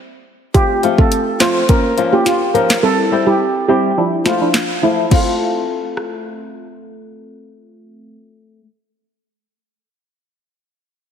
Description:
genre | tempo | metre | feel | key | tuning
dancehall | 105 BPM | 4/4 | straight | F major | A4 = 441 Hz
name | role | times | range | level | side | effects
steel pan | melody | 0.5-6.8 s | E4 to C5 | -17 LUFS | right 2 dB | low-pass filter, tape echo
deep mellow chord stab | accompaniment | 0.5-8.2 s | F3 to F4 | -20 LUFS | right 2 dB | chorus, low-pass filter
afro-pop drum kit | drums | 0.5-6.1 s | crash cymbal, handclaps, hi-hat, kick drum, rim click, snare drum | -17 LUFS | equal | none
flamenco guitar | arpeggios | 0.8-8.6 s | F3 to A4 | -21 LUFS | left 7 dB | low-pass filter
room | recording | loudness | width
moderate lush hall reverb, RT60 2.0 s | heavily compressed radio sound, multiband compression | -13 LUFS | side -8 dB against mid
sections
0.5-5.1 A section; 5.1-7.4 B section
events
break 0.0-0.5; filter sweep 0.5-5.1; kick muted 4.0-5.1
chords
0.0 N.C.; 0.5 F; 1.7 Bbm; 2.8 C; 4.0 Dmadd9; 5.1 F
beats
| 0.54 1.11 1.69 2.26 | 2.83 3.40 3.97 4.54 | 5.12 5.69 6.26 6.83

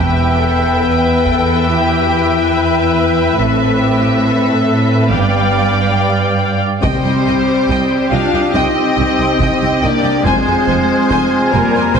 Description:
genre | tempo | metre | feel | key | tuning
cinematic, epic orchestral film score | 70 BPM | 4/4 | straight | E minor, C minor from 6.8 s | A4 = 442 Hz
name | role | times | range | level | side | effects
warm symphonic violin section | melody | 0.0-12.0 s | Bb4 to G5 | -20 LUFS | left 2 dB | none
clear symphonic violin section | second line | 0.0-12.0 s | G4 to Ab5 | -22 LUFS | left 1 dB | none
rich symphonic viola section | accompaniment | 0.0-12.0 s | G3 to F5 | -18 LUFS | equal | none
mellow French horn section | sustained chords | 0.0-12.0 s | Bb3 to F4 | -17 LUFS | left 4 dB | none
rich symphonic cello section | bass | 0.0-12.0 s | C2 to A2 | -19 LUFS | right 3 dB | none
rich symphonic double bass section | bass | 0.0-12.0 s | E1 to C2 | -21 LUFS | right 4 dB | none
taiko ensemble | drums | 1.2-1.7, 6.8-11.1 s | none | -22 LUFS | equal | none
clear woodwind section | sustained chords | 6.8-12.0 s | C4 to Ab5 | -20 LUFS | right 1 dB | none
timpani | percussion | 6.8-8.1 s | C3 | -25 LUFS | equal | none
room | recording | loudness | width
moderate scoring stage reverb, RT60 1.5 s | heavily compressed radio sound, multiband compression, nothing above 11.0 kHz | -11 LUFS | side -6 dB against mid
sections
0.0-6.8 A section; 6.8-12.0 B section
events
none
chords
0.0 Em; 3.4 Amadd9; 5.1 G7; 6.8 Cm; 10.3 Fm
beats
0.83 1.69 2.54 | 3.40 4.26 5.11 5.97 | 6.83 7.68 8.54 9.40 | 10.26 11.11 11.97

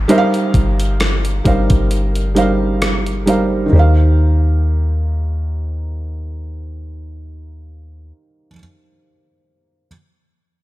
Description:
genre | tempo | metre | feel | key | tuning
contemporary R&B | 66 BPM | 4/4 | swing 54% on 16ths | Eb major | A4 = 439 Hz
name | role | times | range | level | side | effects
felt-muted upright piano | accompaniment | 0.0-9.9 s | Eb3 to F5 | -16 LUFS | right 2 dB | none
soft 808-style bass | bass | 0.0-8.1 s | G1 to Eb2 | -16 LUFS | equal | none
downlifter | sound effects | 0.0-3.7 s | none | -38 LUFS | left 2 dB | none
clean 12-bit digital drum machine | drums | 0.1-3.5 s | hi-hat, kick drum, rim click | -18 LUFS | equal | overdrive
room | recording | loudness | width
little or no reverb | none | -13 LUFS | side -16 dB against mid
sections
0.0-3.7 A section; 3.7-7.4 B section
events
none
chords
0.1 Eb69/G; 3.7 Eb6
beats
| 0.09 1.00 1.91 2.82 | 3.73 4.63 5.54 6.45

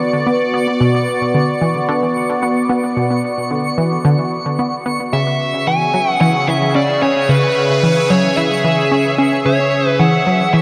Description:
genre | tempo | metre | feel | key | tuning
ambient | 111 BPM | 4/4 | straight | B dorian | A4 = 440 Hz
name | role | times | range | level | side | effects
sweeping resonant pad | sustained chords | 0.0-10.6 s | C#3 to E5 | -20 LUFS | equal | chorus
twinkling granular texture | texture | 0.0-10.6 s | C#6 | -29 LUFS | equal | built-in reverb
analog pluck | riff | 0.3-10.6 s | B2 to C#4 | -20 LUFS | equal | chorus, delay
dark smooth lead guitar | melody | 5.1-10.6 s | B4 to G#5 | -19 LUFS | equal | overdrive, delay
room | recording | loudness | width
wet huge ambient reverb, RT60 8.2 s | none | -15 LUFS | mono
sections
0.0-10.6 A section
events
none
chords
0.0 Bm; 5.1 C#m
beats
0.27 | 0.81 1.35 1.89 2.43 | 2.97 3.51 4.05 4.59 | 5.13 5.67 6.21 6.75 | 7.29 7.83 8.37 8.91 | 9.45 9.99 10.54

